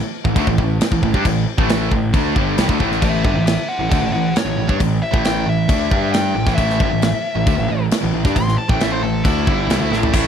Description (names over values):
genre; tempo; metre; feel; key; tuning
hard rock; 135 BPM; 4/4; straight; unclear; A4 = 441 Hz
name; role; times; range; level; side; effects
high-gain distorted guitar; riff; 0.2-10.3 s; G2 to G4; -22 LUFS; right 10 dB; distortion
overdriven semi-hollow guitar; riff; 0.2-10.3 s; G2 to G4; -23 LUFS; left 12 dB; none
fuzz picked electric bass; bass; 0.2-10.3 s; G1 to G2; -22 LUFS; equal; overdrive
tight metal drum kit; drums; 0.2-10.2 s; crash cymbal, kick drum, snare drum, splash cymbal, toms; -19 LUFS; equal; none
distorted electric guitar; riff; 0.3-3.0, 10.1-10.3 s; G2 to D4; -26 LUFS; left 1 dB; overdrive
nasal lead guitar with a parked wah; melody; 3.0-10.3 s; E4 to C6; -23 LUFS; left 2 dB; overdrive, tape echo
room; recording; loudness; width
light reverb; none; -15 LUFS; side -8 dB against mid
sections
0.0-3.0 A section; 3.0-10.3 B section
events
lead electric guitar solo 3.0-10.3; drum fill 9.9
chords
0.0 A5; 5.9 G5; 6.4 A5